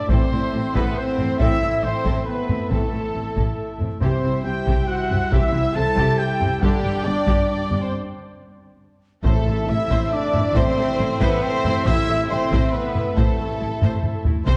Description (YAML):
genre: cinematic, epic orchestral film score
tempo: 138 BPM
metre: 3/4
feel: straight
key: A minor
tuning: A4 = 440 Hz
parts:
  - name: warm studio violin section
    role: melody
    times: 0.0-14.6 s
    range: G4 to A5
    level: -36 LUFS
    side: equal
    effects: none
  - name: hollow concert flute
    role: second line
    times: 0.0-14.6 s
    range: G5 to A6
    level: -34 LUFS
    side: equal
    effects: none
  - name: warm symphonic violin section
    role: second line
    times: 0.0-14.6 s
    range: A4 to G5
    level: -36 LUFS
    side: equal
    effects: none
  - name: mellow French horn section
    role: sustained chords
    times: 0.0-14.6 s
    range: G3 to A4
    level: -28 LUFS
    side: equal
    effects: none
  - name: pipe organ, foundations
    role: sustained chords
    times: 0.0-14.6 s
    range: G3 to G5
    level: -34 LUFS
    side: equal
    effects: none
  - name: clear trumpet section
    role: stabs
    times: 0.0-14.6 s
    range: G4 to A5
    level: -31 LUFS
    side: equal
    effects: none
  - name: clear symphonic viola section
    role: accompaniment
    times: 0.1-14.6 s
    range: B3 to E5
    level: -35 LUFS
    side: equal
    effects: none
  - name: clear trombone section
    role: sustained chords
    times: 0.1-6.8, 9.2-14.6 s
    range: G2 to D4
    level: -37 LUFS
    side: equal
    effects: none
  - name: warm symphonic cello section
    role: bass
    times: 0.1-14.5 s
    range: G2 to C3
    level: -31 LUFS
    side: equal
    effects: none
  - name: warm symphonic double bass section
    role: bass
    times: 0.1-14.5 s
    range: G1 to C2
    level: -29 LUFS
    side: equal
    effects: none
  - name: taiko ensemble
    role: drums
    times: 0.1-14.6 s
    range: none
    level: -26 LUFS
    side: equal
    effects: none
  - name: timpani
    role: percussion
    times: 9.3-9.9 s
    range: A2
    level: -29 LUFS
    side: equal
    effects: none
room: wet scoring stage reverb, RT60 2.0 s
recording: dark, warm production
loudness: -21 LUFS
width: mono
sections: 0.0-9.2 A section; 9.2-14.6 B section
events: break 7.9-9.2; drum fill 13.8-14.5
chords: 0.0 Am; 4.0 C; 6.6 G5; 9.2 Am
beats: | 0.09 0.53 0.96 | 1.40 1.84 2.27 | 2.71 3.14 3.58 | 4.02 4.45 4.89 | 5.32 5.76 6.20 | 6.63 7.07 7.50 | 7.94 8.38 8.81 | 9.25 9.68 10.12 | 10.56 10.99 11.43 | 11.86 12.30 12.74 | 13.17 13.61 14.04 | 14.48